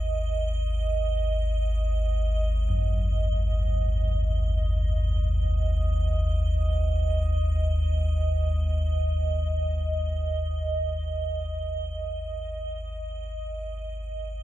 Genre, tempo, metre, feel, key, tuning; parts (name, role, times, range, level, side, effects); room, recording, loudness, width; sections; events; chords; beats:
dark ambient drone; free time; A4 = 442 Hz
gamelan-type bossed gongs; arpeggios; 0.0-10.5 s; F#2 to C#4; -36 LUFS; left 2 dB; ping-pong delay
deep rumbling drone; drone; 0.0-14.4 s; G#1 to D#2; -25 LUFS; equal; built-in reverb, lush chorus
icy glass pad; texture; 0.0-14.4 s; D#5; -33 LUFS; right 4 dB; chorus, built-in reverb
light reverb; dark, warm production; -24 LUFS; side -14 dB against mid
0.0-14.4 A section
filter sweep on synth drone 0.0-14.4; fade-out 11.3-14.4
0.0 G#5; 4.3 D#m
free time